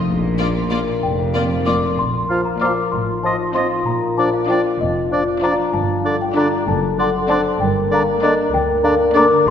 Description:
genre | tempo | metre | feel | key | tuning
cinematic, playful, whimsical film cue | 64 BPM (dotted quarters) | 6/8 | straight | Bb major | A4 = 440 Hz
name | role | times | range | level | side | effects
concert harp | arpeggios | 0.0-9.5 s | F#2 to D6 | -24 LUFS | left 5 dB | none
mellow tuba | bass | 0.1-1.8 s | F1 to Bb1 | -26 LUFS | right 2 dB | none
warm chamber cello section | bass | 0.1-9.5 s | D2 to Bb2 | -28 LUFS | right 3 dB | none
warm chamber double bass section | bass | 0.1-9.5 s | F1 to D2 | -27 LUFS | right 3 dB | none
warm studio violin section | melody | 0.4-9.4 s | D5 to Eb5 | -32 LUFS | left 2 dB | none
warm symphonic violin section | second line | 0.4-9.4 s | D4 to G4 | -30 LUFS | left 2 dB | none
dark symphonic viola section | accompaniment | 0.4-9.4 s | Bb3 to D4 | -28 LUFS | right 1 dB | none
mellow French horn section | sustained chords | 0.4-9.5 s | Bb3 to Bb4 | -22 LUFS | left 1 dB | none
small celesta | melody | 1.0-9.5 s | D5 to D6 | -23 LUFS | left 5 dB | none
mellow hollow flute section | second line | 2.3-9.2 s | Bb5 to D6 | -27 LUFS | left 2 dB | none
warm clarinet | second line | 2.3-9.3 s | D4 to F4 | -27 LUFS | left 1 dB | none
warm oboe | second line | 2.3-9.3 s | D5 to F5 | -25 LUFS | right 1 dB | none
mellow bassoon | accompaniment | 2.3-9.3 s | D3 to F3 | -24 LUFS | right 1 dB | none
room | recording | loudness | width
wet scoring stage reverb, RT60 2.0 s | none | -15 LUFS | side -8 dB against mid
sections
0.0-2.0 A section; 2.0-9.5 A section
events
none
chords
0.1 Bb; 2.9 F7/A; 3.9 Bb; 5.7 G5; 6.7 D7/F#; 7.6 Gm

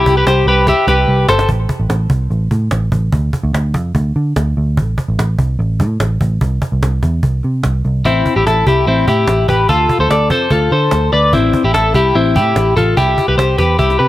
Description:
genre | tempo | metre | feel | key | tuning
jangly indie pop | 146 BPM | 4/4 | straight | A minor | A4 = 439 Hz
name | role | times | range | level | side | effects
twelve-string electric guitar | arpeggios | 0.0-1.5, 8.1-14.1 s | C4 to D5 | -12 LUFS | left 2 dB | analog delay, plate reverb
vintage muted picked electric bass | bass | 0.0-14.1 s | G1 to D3 | -15 LUFS | right 1 dB | none
cajon | drums | 0.1-14.0 s | none | -20 LUFS | right 1 dB | none
room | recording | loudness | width
light reverb | none | -11 LUFS | side -15 dB against mid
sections
0.0-1.5 A section; 1.5-14.1 B section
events
drum fill 0.7-1.5, 13.8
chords
0.0 Cmaj7; 1.5 N.C.; 8.1 Am7; 9.7 Dm7; 11.3 Am7; 13.0 Cmaj7

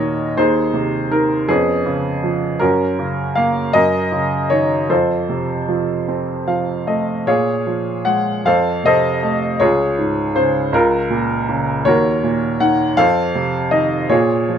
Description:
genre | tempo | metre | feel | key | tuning
classical, lyrical solo piano | 53 BPM (dotted quarters) | 6/8 | rubato | unclear | A4 = 442 Hz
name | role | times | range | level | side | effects
clear upright piano | solo | 0.0-14.6 s | Db2 to Gb5 | -15 LUFS | equal | none
room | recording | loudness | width
moderate studio ambience, RT60 0.5 s | none | -15 LUFS | side -8 dB against mid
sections
0.0-14.6 A section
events
upright piano fill 6.1-7.3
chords
0.4 Ab/Eb; 1.5 Db7/F; 2.6 Gb; 3.8 Ebm7/Gb; 4.9 F; 7.3 Bbm7; 8.4 F; 9.6 Db; 10.7 Bbm/Db; 11.9 Ebm7; 13.0 F7

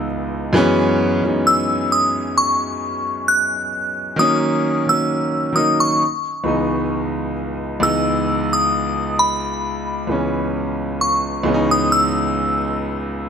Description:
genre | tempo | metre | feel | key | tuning
R&B | 66 BPM | 4/4 | swing 54% on 16ths | C# dorian | A4 = 440 Hz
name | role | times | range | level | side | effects
glassy synth bell | melody | 0.0-13.3 s | B5 to F#6 | -19 LUFS | left 1 dB | chorus
clear concert grand piano | accompaniment | 0.0-13.3 s | C#2 to D#4 | -19 LUFS | equal | none
room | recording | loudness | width
light reverb | none | -16 LUFS | side -7 dB against mid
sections
0.0-7.8 A section; 7.8-13.3 B section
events
none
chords
0.0 C#m9; 0.5 F#9sus4; 4.2 D#m7; 6.0 C#m9

